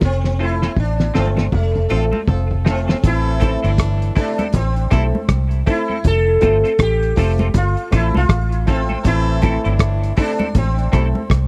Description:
roots reggae; 80 BPM; 4/4; swing 60% on 16ths; A minor; A4 = 441 Hz
sitar; melody; 0.0-11.5 s; A3 to A4; -24 LUFS; equal; tape echo
vintage muted fingered electric bass; bass; 0.0-11.5 s; F1 to C2; -20 LUFS; equal
cloth-damped thuddy drum kit; drums; 0.0-11.5 s; hi-hat, kick drum, rim click, snare drum, toms; -19 LUFS; equal
congas; percussion; 0.0-11.5 s; -28 LUFS; equal
clean electric guitar; accompaniment; 0.4-11.1 s; C4 to A4; -32 LUFS; equal; ensemble chorus, tape echo
dark upright piano; stabs; 0.4-11.2 s; A3 to A4; -27 LUFS; equal
warm horn section; second line; 1.1-11.1 s; A2 to A4; -30 LUFS; equal; tape echo
small room ambience; dry, close 1970s-style studio recording; -17 LUFS; mono
0.0-3.0 A section; 3.0-11.5 B section
drum fill 0.0-3.0; band accent 0.0-3.0
0.0 F; 3.0 Am; 6.0 F; 9.1 Am

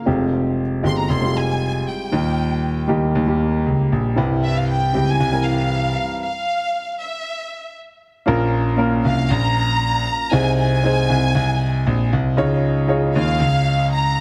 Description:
piano-driven pop; 117 BPM; 4/4; straight; A4 = 440 Hz
warm upright piano; accompaniment; 0.0-14.2 s; G2 to Db5; -24 LUFS; equal
clear grand piano; bass; 0.1-14.1 s; F1 to Eb2; -21 LUFS; equal
warm studio violin section; melody; 0.9-14.2 s; E5 to C6; -26 LUFS; equal
light reverb, small room ambience; -19 LUFS; mono
0.0-8.3 A section; 8.3-14.2 B section
stop 6.2-8.3
0.1 Fmadd9; 2.1 Eb; 4.2 C; 6.2 N.C.; 8.3 Bbm; 10.3 Ab/C; 12.4 Dbadd9

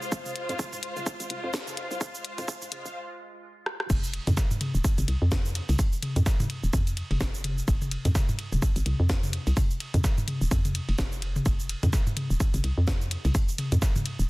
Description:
minimal techno; 127 BPM; 4/4; swing 58% on 16ths; F minor; A4 = 440 Hz
hollow knocking FM bass; bass; 0.0-14.3 s; Eb1 to F2; -26 LUFS; equal; sidechain pumping
house drum kit; drums; 0.0-14.3 s; cabasa, crash cymbal, hi-hat, rim click, snare drum; -35 LUFS; equal; soft clipping on snare
clear symphonic string section; texture; 0.0-3.0 s; F4 to F5; -35 LUFS; left 2 dB; sidechain pumping
pulsing gated texture; texture; 0.0-3.0 s; Ab3 to Ab4; -43 LUFS; right 4 dB; chorus, built-in reverb, sidechain pumping
electronic kick drum; drums; 0.1-13.9 s; -26 LUFS; equal
electronic toms; percussion; 0.3-14.0 s; -32 LUFS; equal; tape echo
dusty soul sampler-style drum kit; drums; 3.9-14.2 s; hi-hat, ride cymbal, snare drum; -40 LUFS; right 2 dB; sidechain pumping on cymbals, high-pass filter on cymbals, high-pass filter on snare, sidechain pumping on hats, high-pass filter on hats, high-pass filter on room
little or no reverb; dense, heavily limited modern master, high-pass filter; -25 LUFS; side -22 dB against mid
0.0-3.9 A section; 3.9-14.3 B section
build-up 0.0-3.9; filter sweep 0.0-3.9; drum fill 3.7; drop 3.9-14.3
0.0 Fm; 3.9 N.C.

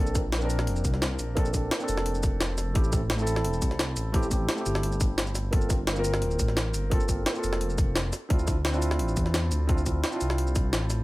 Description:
liquid drum and bass; 173 BPM; 4/4; straight; G dorian; A4 = 440 Hz
felt-muted upright piano; accompaniment; 0.0-11.0 s; A3 to Bb4; -31 LUFS; right 1 dB; digital delay
dark detuned saw bass; bass; 0.0-11.0 s; D1 to E2; -28 LUFS; equal
jungle sampler-style drum kit; drums; 0.1-11.0 s; hi-hat, shaker, snare drum; -30 LUFS; equal; studio reverb
electronic kick drum; drums; 0.2-10.6 s; -26 LUFS; equal; studio reverb
little or no reverb; -24 LUFS; side -19 dB against mid
0.0-11.0 A section
0.0 Bbmaj9; 2.8 Am7; 5.5 Gm11; 8.1 Dm9

